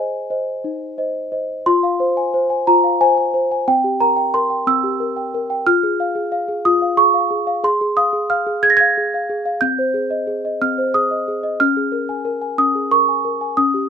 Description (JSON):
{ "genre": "classical, lullaby for celesta", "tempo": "60 BPM (dotted quarters)", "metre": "6/8", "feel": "straight", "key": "F minor", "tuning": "A4 = 440 Hz", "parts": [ { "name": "small celesta", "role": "solo", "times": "0.0-13.9 s", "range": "C4 to Bb6", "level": "-15 LUFS", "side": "equal", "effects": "none" } ], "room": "light reverb", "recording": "minimal, uncompressed stereo recording", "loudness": "-15 LUFS", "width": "side -7 dB against mid", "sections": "0.0-1.7 A section; 1.7-13.9 B section", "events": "none", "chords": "0.0 Ab; 1.7 Fm; 3.7 C7; 5.7 Fm; 7.6 Fm/Ab; 9.6 Ab/C; 11.6 Bbm7/Db" }